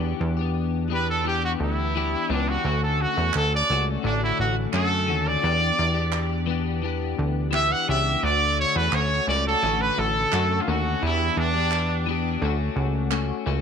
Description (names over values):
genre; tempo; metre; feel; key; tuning
indie pop, bedroom pop; 86 BPM; 4/4; straight; D major; A4 = 439 Hz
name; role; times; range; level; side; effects
clean electric guitar; accompaniment; 0.0-13.6 s; D3 to G4; -28 LUFS; left 14 dB; analog chorus, warbly pitch drift
plucky analog bass; bass; 0.0-13.6 s; A1 to F#2; -25 LUFS; right 2 dB; none
brilliant trumpet; melody; 0.9-12.1 s; D4 to F#5; -24 LUFS; right 2 dB; lush chorus, tape echo
group handclap; percussion; 3.3-13.3 s; none; -32 LUFS; right 16 dB; none
room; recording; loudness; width
light reverb, studio ambience; 1960s-style stereo with parts hard left and right; -21 LUFS; side -7 dB against mid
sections
0.0-13.6 A section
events
trumpet solo 0.0-13.6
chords
0.0 Em7; 2.6 Dmaj7; 5.4 Em7; 8.2 Dmaj7; 11.0 Em7; 12.4 Dmaj7